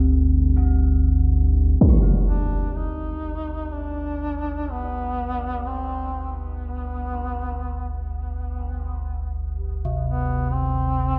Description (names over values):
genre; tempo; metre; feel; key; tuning
dark ambient drone; free time; none; none; G major; A4 = 441 Hz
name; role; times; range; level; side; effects
gamelan-type bronze metallophone; arpeggios; 0.0-11.2 s; C3 to G4; -31 LUFS; equal; analog delay
deep rumbling drone; drone; 0.0-11.2 s; G1 to D2; -26 LUFS; equal; built-in reverb, subtle chorus
quartz singing bowl; texture; 0.0-1.8 s; G4; -51 LUFS; equal; none
impact; percussion; 1.8-2.0 s; none; -21 LUFS; equal; low-pass filter on sfx
mellow duduk; melody; 2.3-11.2 s; B3 to Eb4; -32 LUFS; equal; analog delay
room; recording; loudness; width
light reverb, studio reverb; echo-heavy mix; -24 LUFS; mono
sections
0.0-1.8 A section; 1.8-11.2 B section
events
fade-in on synth drone 1.8-11.2; fade-in on bronze metallophone 1.8-11.2; fade-in on duduk 1.8-11.2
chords
0.0 G5